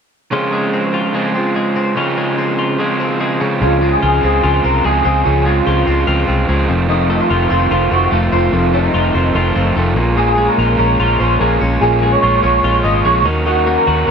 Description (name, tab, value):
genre	indie pop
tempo	146 BPM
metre	4/4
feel	straight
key	Db major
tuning	A4 = 439 Hz
part	crunchy overdriven guitar	accompaniment	0.3-14.1 s	F2 to Gb4	-18 LUFS	right 6 dB	none
part	twelve-string electric guitar	arpeggios	0.3-14.1 s	F2 to Gb4	-18 LUFS	left 5 dB	slapback echo
part	electric guitar through a small old amp	melody	3.6-14.1 s	Eb4 to Eb5	-16 LUFS	equal	ensemble chorus, slapback echo
part	vintage muted fingered electric bass	bass	3.6-14.1 s	F1 to Eb2	-17 LUFS	equal	none
room	light reverb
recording	none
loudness	-12 LUFS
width	side -6 dB against mid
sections	0.3-3.6 A section; 3.6-14.1 B section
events	none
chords	0.3 Dbmaj7; 6.7 F7; 10.0 Bbm7; 13.3 Ebm7